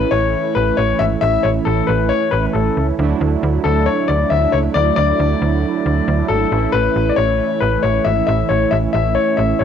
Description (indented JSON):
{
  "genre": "synth-pop",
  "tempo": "136 BPM",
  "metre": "4/4",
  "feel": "straight",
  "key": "A major",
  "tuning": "A4 = 439 Hz",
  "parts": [
    { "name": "warm concert grand piano", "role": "melody", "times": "0.0-9.6 s", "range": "A4 to E5", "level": "-18 LUFS", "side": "left 9 dB", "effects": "cassette tape, tape echo" },
    { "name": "analog synth brass", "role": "accompaniment", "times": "0.0-9.6 s", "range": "E3 to E4", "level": "-20 LUFS", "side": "right 9 dB", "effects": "chorus, cassette tape" },
    { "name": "slap-like FM bass", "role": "bass", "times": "0.0-9.6 s", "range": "G#1 to D2", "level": "-19 LUFS", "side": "equal", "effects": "none" }
  ],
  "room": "moderate small room reverb, RT60 0.6 s",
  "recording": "home recording on cassette",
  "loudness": "-14 LUFS",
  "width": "side -8 dB against mid",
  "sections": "0.0-9.6 A section",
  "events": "none",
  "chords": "0.0 A; 3.0 Dadd9; 6.5 A"
}